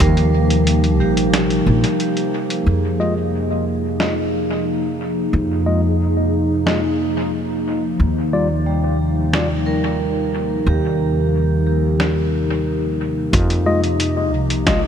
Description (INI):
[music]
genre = ambient dub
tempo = 90 BPM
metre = 4/4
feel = straight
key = F minor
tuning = A4 = 441 Hz
[part]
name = warbly tape-like pad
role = sustained chords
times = 0.0-14.9 s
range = C3 to Ab4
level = -21 LUFS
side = left 1 dB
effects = chorus, built-in reverb
[part]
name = vibraphone with medium hard mallets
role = arpeggios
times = 0.0-13.4 s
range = G3 to Bb4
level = -25 LUFS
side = right 3 dB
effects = low-pass filter, analog delay
[part]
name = upright bass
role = bass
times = 0.0-14.9 s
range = Bb1 to F2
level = -19 LUFS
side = equal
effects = none
[part]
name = electronic kick drum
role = drums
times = 0.0-0.1, 13.3-14.8 s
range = none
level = -20 LUFS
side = equal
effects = none
[part]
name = lo-fi sampler-style drum kit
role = drums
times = 0.0-14.8 s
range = hi-hat, snare drum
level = -24 LUFS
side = equal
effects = dub echo
[part]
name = mellow tine electric piano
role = stabs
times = 3.0-9.5, 13.7-14.8 s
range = G3 to Eb5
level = -24 LUFS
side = left 2 dB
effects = dub echo
[sound]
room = moderate huge ambient reverb, RT60 4.7 s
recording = dreamy mix soaked in reverb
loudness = -16 LUFS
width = side -8 dB against mid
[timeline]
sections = 0.0-2.7 A section; 2.7-13.3 B section; 13.3-14.9 C section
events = filter sweep on vibraphone 0.0-2.7, 2.7-13.3; break 1.3-2.7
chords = 0.0 Ebadd9; 2.7 Fm7; 8.0 Ebadd9; 13.3 Fm7